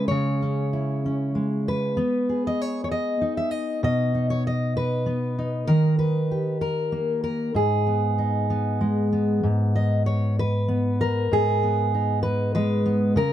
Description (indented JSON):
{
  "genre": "folk, solo fingerstyle acoustic guitar",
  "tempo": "65 BPM (dotted quarters)",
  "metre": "6/8",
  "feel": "straight",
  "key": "G# minor",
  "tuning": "A4 = 441 Hz",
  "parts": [
    { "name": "fingerpicked steel-string acoustic guitar", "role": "solo", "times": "0.0-13.3 s", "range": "G#2 to E5", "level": "-21 LUFS", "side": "equal", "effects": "none" }
  ],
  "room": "light reverb",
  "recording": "dark, warm production",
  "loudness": "-21 LUFS",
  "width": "side -11 dB against mid",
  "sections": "0.0-9.4 A section; 9.4-13.3 A section",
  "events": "none",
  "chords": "0.0 C#m; 2.0 G#m/B; 5.7 D#; 7.5 G#m",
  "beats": "| 0.11 1.03 | 1.97 2.91 | 3.83 4.76 | 5.68 6.61 | 7.54 8.48 | 9.43 10.38 | 11.32 12.25 | 13.17"
}